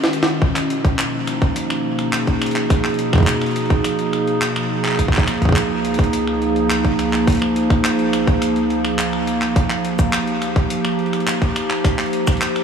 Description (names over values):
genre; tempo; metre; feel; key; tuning
IDM; 105 BPM; 4/4; straight; B lydian; A4 = 440 Hz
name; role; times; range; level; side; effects
warbly tape-like pad; sustained chords; 0.0-12.6 s; C#2 to G#4; -19 LUFS; right 1 dB; chorus, built-in reverb
jungle sampler-style drum kit; drums; 0.0-12.6 s; finger snaps, handclaps, hi-hat, shaker, snare drum; -23 LUFS; equal; tape echo
electronic kick drum; drums; 0.4-12.4 s; none; -16 LUFS; equal; none
room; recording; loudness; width
wet huge ambient reverb, RT60 8.7 s; dreamy mix soaked in reverb, studio ambience; -16 LUFS; side -6 dB against mid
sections
0.4-12.6 A section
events
break 0.0-0.4; drum fill 0.0-0.4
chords
0.4 Bmaj9#11; 5.0 C#add9; 9.6 D#add9